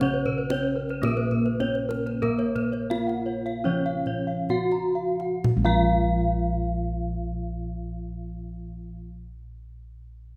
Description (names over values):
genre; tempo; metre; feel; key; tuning
Balinese gamelan; 59-126 BPM; 4/4; straight; Bb pelog; A4 = 440 Hz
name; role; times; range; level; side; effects
gamelan-type bronze metallophone; melody; 0.0-9.1 s; Bb3 to Gb4-20c; -32 LUFS; equal; none
gamelan-type bronze metallophone; accompaniment; 0.0-9.1 s; Db3-30c to Bb3; -34 LUFS; equal; none
gamelan-type bronze metallophone; arpeggios; 0.0-9.1 s; Bb4 to Gb5-20c; -34 LUFS; equal; none
gamelan-type bossed gongs; bass; 0.0-9.0 s; Bb1 to Bb4; -32 LUFS; equal; none
kendang; percussion; 0.0-5.9 s; none; -34 LUFS; equal; none
gamelan-type bronze metallophone; arpeggios; 0.1-9.1 s; Bb4 to Bb5; -34 LUFS; equal; none
room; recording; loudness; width
moderate recital hall reverb, RT60 1.7 s; none; -26 LUFS; mono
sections
0.0-5.5 A section; 5.5-9.5 B section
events
slowing down 0.0-5.5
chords
none